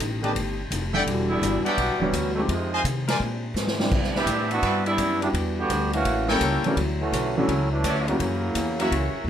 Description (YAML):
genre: jazz, big band swing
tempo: 168 BPM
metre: 4/4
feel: swing 66% on 8ths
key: unclear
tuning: A4 = 440 Hz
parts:
  - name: picked plugged-in steel-string acoustic guitar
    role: accompaniment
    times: 0.0-9.3 s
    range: F2 to G4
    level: -32 LUFS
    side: left 3 dB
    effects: none
  - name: upright bass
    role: bass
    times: 0.0-9.3 s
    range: E1 to C3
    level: -28 LUFS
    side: equal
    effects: none
  - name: swinging big-band drum kit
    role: drums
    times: 0.0-9.0 s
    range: crash cymbal, hi-hat, kick drum, ride cymbal, snare drum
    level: -30 LUFS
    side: left 1 dB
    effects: none
  - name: warm concert grand piano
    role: accompaniment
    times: 0.2-8.9 s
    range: D#3 to A4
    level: -27 LUFS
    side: equal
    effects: none
  - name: bright trumpet section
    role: stabs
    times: 0.2-9.2 s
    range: C4 to A5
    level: -27 LUFS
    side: left 1 dB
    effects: none
  - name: clear trombone section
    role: second line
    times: 1.3-9.2 s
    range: B2 to G4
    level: -26 LUFS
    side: right 2 dB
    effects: none
room: moderate club reverb, RT60 0.6 s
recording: none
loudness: -22 LUFS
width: side -9 dB against mid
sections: 0.0-9.3 A section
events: trombone section solo 0.0-9.3; drum fill 3.6-3.9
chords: 0.0 B7alt; 1.1 Em9; 2.5 Fm7; 3.2 A#9; 3.9 Cmaj9; 5.3 Em9; 6.1 A7b9; 6.8 Dmaj9; 8.2 F#7